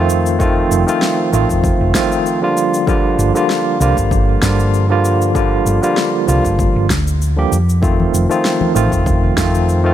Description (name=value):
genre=sunset chillout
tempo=97 BPM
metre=4/4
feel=swing 54% on 16ths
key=G minor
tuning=A4 = 440 Hz
part: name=barky tine electric piano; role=accompaniment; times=0.0-9.9 s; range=D3 to G4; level=-15 LUFS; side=right 1 dB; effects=medium stereo tremolo, auto-pan, digital delay
part: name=hollow-body short-scale fingered electric bass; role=bass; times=0.0-9.9 s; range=F1 to G2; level=-16 LUFS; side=equal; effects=none
part: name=electronic shaker and snare drum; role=drums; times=0.1-9.8 s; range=none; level=-23 LUFS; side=equal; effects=none
part: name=electronic kick drum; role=drums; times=0.4-9.5 s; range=none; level=-19 LUFS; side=equal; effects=none
part: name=congas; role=percussion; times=8.0-9.2 s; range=none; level=-22 LUFS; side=left 5 dB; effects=none
room=light reverb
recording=none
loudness=-12 LUFS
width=side -11 dB against mid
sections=0.0-9.9 A section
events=none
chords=0.0 F7; 2.6 Gm7; 7.8 F7